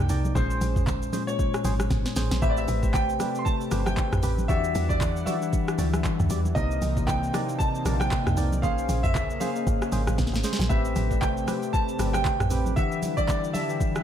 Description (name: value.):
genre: amapiano.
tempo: 116 BPM.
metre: 4/4.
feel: swing 58% on 16ths.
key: unclear.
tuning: A4 = 440 Hz.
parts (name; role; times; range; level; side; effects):
clear concert grand piano; melody; 0.0-14.0 s; C5 to C6; -30 LUFS; right 1 dB; lush chorus, diffuse ambient delay.
bell-like tine electric piano; accompaniment; 0.0-14.0 s; Bb2 to A5; -31 LUFS; left 6 dB; none.
woody log drum bass; bass; 0.0-12.8 s; G1 to E2; -27 LUFS; equal; none.
percussive organ stab; stabs; 0.1-12.8 s; C4 to Eb5; -36 LUFS; right 3 dB; chorus, diffuse ambient delay.
smooth R&B drum kit; drums; 0.1-14.0 s; handclaps, hi-hat, kick drum, rim click, shaker, snare drum, toms; -28 LUFS; equal; none.
congas; percussion; 0.2-13.7 s; none; -35 LUFS; right 2 dB; none.
warm analog pad; sustained chords; 2.4-14.0 s; C3 to F#5; -34 LUFS; right 1 dB; chorus, sidechain pumping.
room: light reverb, digital ambience.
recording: none.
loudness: -23 LUFS.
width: side -10 dB against mid.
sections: 0.0-14.0 A section.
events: drum fill 1.9-2.4, 10.2-10.7.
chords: 0.4 Bbm9; 2.4 Am9; 4.5 Em9; 6.6 Cm9; 8.6 Bbm9; 10.7 Am9; 12.8 Em9.